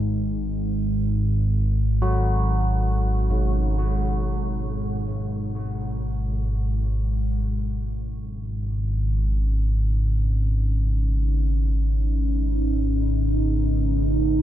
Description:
dark ambient drone; free time; G# minor; A4 = 439 Hz
analog drone; drone; 0.0-14.4 s; G#1 to G#2; -22 LUFS; equal; chorus
carillon bells; arpeggios; 2.0-10.4 s; G#2 to F#4; -30 LUFS; equal; tape echo
deep dark ambient pad; sustained chords; 9.0-14.4 s; C#4 to B4; -27 LUFS; right 1 dB; chorus, built-in reverb
moderate huge ambient reverb, RT60 7.9 s; dark, warm production; -21 LUFS; side -12 dB against mid
0.0-7.5 A section; 7.5-14.4 B section
0.0 G#m

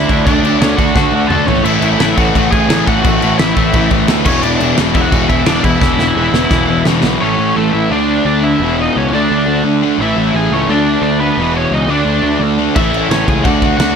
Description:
punk rock; 173 BPM; 4/4; straight; A4 = 438 Hz
biting lead guitar; melody; 0.0-14.0 s; A3 to A5; -18 LUFS; equal; overdrive
distorted electric guitar; riff; 0.0-14.0 s; E2 to D4; -20 LUFS; equal; overdrive
raw garage guitar; riff; 0.0-14.0 s; E2 to D4; -19 LUFS; right 14 dB; overdrive
sludgy distorted guitar; riff; 0.0-14.0 s; E2 to D4; -18 LUFS; left 13 dB; overdrive
fuzz picked electric bass; bass; 0.0-14.0 s; E1 to D2; -18 LUFS; equal; overdrive
loose indie drum kit; drums; 0.1-7.1, 12.8-13.9 s; crash cymbal, kick drum, snare drum, toms; -15 LUFS; equal
light reverb; -10 LUFS; side -6 dB against mid
0.0-7.2 A section; 7.2-14.0 B section
drum fill 1.0-1.7, 5.8-7.2
0.0 D; 1.5 A5; 4.3 E5; 7.2 A; 7.9 D5; 8.6 E5; 9.1 D5; 10.0 A; 10.7 D5; 11.4 E5; 11.9 D5; 12.8 A; 13.4 D

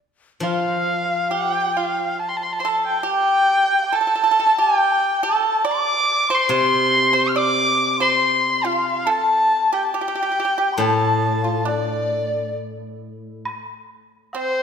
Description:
chinese traditional, Chinese chamber ensemble; 69 BPM; 4/4; rubato; A4 = 440 Hz
dark erhu; melody; 0.4-14.6 s; C5 to F6; -19 LUFS; equal
mellow hollow large dizi; second line; 0.4-14.6 s; C5 to D6; -24 LUFS; left 5 dB
pipa; second line; 0.4-14.6 s; C4 to D5; -25 LUFS; right 6 dB
steel-string zither; accompaniment; 0.4-13.5 s; A2 to F3; -25 LUFS; left 2 dB
woodblock; percussion; 13.5-14.5 s; -33 LUFS; right 1 dB
wet scoring stage reverb, RT60 1.6 s; -17 LUFS; side -7 dB against mid
0.0-13.5 A section; 13.5-14.6 B section

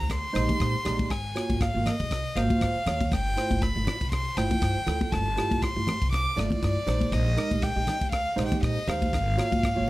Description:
electric jazz fusion; 120 BPM; 4/4; swing 56% on 16ths; A4 = 438 Hz
rich violin; melody; 0.0-9.9 s; D5 to D6; -30 LUFS; equal; slapback echo
tine electric piano; accompaniment; 0.0-9.9 s; Ab3 to Eb5; -31 LUFS; right 3 dB; phaser
upright bass; bass; 0.0-9.9 s; G1 to Bb2; -29 LUFS; equal
tight funk drum kit; drums; 0.1-9.8 s; kick drum, ride cymbal, rim click; -31 LUFS; equal
congas; percussion; 0.5-9.9 s; -32 LUFS; left 2 dB
moderate studio ambience, RT60 0.5 s; -24 LUFS; side -17 dB against mid
0.0-9.9 A section
0.0 Bb13sus4; 1.1 Ab13sus4; 3.1 G13sus4; 6.9 Bb13sus4; 9.1 Ab13sus4

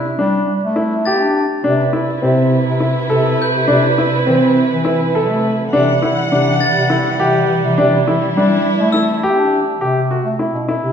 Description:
contemporary instrumental, contemporary; 206 BPM (eighths); 7/8; straight; C lydian; A4 = 438 Hz
clear grand piano; arpeggios; 0.0-10.9 s; C4 to A4; -16 LUFS; equal
glockenspiel with hard plastic mallets; texture; 0.0-10.1 s; E6 to B6; -25 LUFS; equal
warm bass clarinet; bass; 0.2-10.9 s; B2 to D4; -18 LUFS; left 1 dB
dark chamber string section; sustained chords; 1.6-9.8 s; C3 to F#5; -19 LUFS; right 2 dB
wet recital hall reverb, RT60 1.7 s; recorded in a church or concert hall; -13 LUFS; side -8 dB against mid
0.0-9.8 A section; 9.8-10.9 B section
0.0 Emadd9 (rootless); 1.6 Cmaj7; 5.7 Emadd9/C; 9.8 C

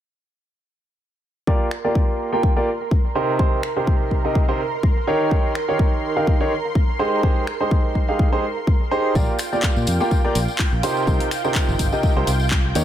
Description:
piano house; 125 BPM; 4/4; swing 55% on 16ths; Bb mixolydian; A4 = 440 Hz
analog string pad; sustained chords; 1.5-12.8 s; F4 to C6; -28 LUFS; right 3 dB; ensemble chorus, sidechain pumping
clear grand piano; riff; 1.5-12.8 s; C3 to G5; -22 LUFS; right 1 dB; sidechain pumping, low-pass filter, tape echo
electronic kick drum; drums; 1.5-12.6 s; -19 LUFS; left 1 dB; small room ambience
house drum kit; drums; 1.7-12.8 s; finger snaps, handclaps, hi-hat; -27 LUFS; left 1 dB; small room ambience
fingered electric bass; bass; 9.2-12.8 s; G1 to Bb2; -22 LUFS; left 1 dB; sidechain pumping
tambourine; percussion; 9.2-12.8 s; -36 LUFS; left 4 dB
little or no reverb; -18 LUFS; side -11 dB against mid
1.5-12.8 A section
1.5 Bb6; 3.2 Cm7; 5.1 Eb7; 7.0 Abmaj7; 9.2 Bb6; 10.8 Cm7

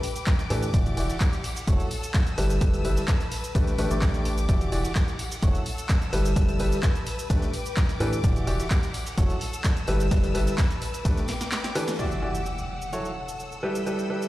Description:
piano house; 128 BPM; 4/4; straight; E minor; A4 = 438 Hz
clear symphonic string section; sustained chords; 0.0-14.3 s; G4 to E6; -36 LUFS; left 2 dB; sidechain pumping
breakbeat sampler-style drum kit; drums; 0.0-12.0 s; hi-hat, snare drum; -43 LUFS; equal
punchy analog drum machine; drums; 0.0-14.3 s; handclaps, hi-hat, shaker, snare drum; -34 LUFS; equal
tambourine; percussion; 0.0-12.0 s; -44 LUFS; left 3 dB
electronic kick drum; drums; 0.3-11.1 s; -24 LUFS; equal
clear baby grand piano; riff; 0.5-14.3 s; E3 to D5; -30 LUFS; equal; sidechain pumping, low-pass filter, dub echo
organ-like FM bass; bass; 0.5-11.2 s; E1 to A2; -27 LUFS; equal; tube saturation, sidechain pumping
impact; sound effects; 12.0-13.9 s; -34 LUFS; equal
little or no reverb; played on a big sound system in a bare room, large studio reverb, lossy compression artefacts; -23 LUFS; side -16 dB against mid
0.0-12.0 A section; 12.0-14.3 B section
drum fill 11.3-12.0; kick drops out 11.5-12.0; band accent 11.9; impact 12.0-13.9
0.0 A9sus4; 0.7 Em9; 1.7 F#m7; 2.4 G69; 3.6 A9sus4; 4.5 Em9; 5.4 F#m7; 6.1 G69; 7.3 A9sus4; 8.2 Em9; 9.2 F#m7; 9.9 G69; 11.1 A9sus4; 12.0 Em9; 12.9 F#m7; 13.6 G69

